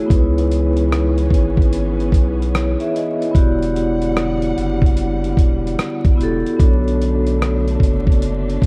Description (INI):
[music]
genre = lo-fi hip hop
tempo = 74 BPM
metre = 4/4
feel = swing 65% on 16ths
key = C# phrygian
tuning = A4 = 440 Hz
[part]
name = vibraphone with soft mallets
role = accompaniment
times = 0.0-8.7 s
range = A3 to E5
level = -22 LUFS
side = equal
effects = cassette tape
[part]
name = warm studio string section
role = sustained chords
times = 0.0-8.7 s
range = D3 to F#5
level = -32 LUFS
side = equal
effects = none
[part]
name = saturated sub bass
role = bass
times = 0.1-8.7 s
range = E1 to C#2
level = -23 LUFS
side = equal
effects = none
[part]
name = dusty soul sampler-style drum kit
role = drums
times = 0.1-8.7 s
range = hi-hat, kick drum, rim click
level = -18 LUFS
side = equal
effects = none
[sound]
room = little or no reverb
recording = dark, warm production, vinyl crackle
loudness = -17 LUFS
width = mono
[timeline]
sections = 0.0-8.7 A section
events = none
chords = 0.1 C#m9; 3.3 Em9; 6.6 Bm9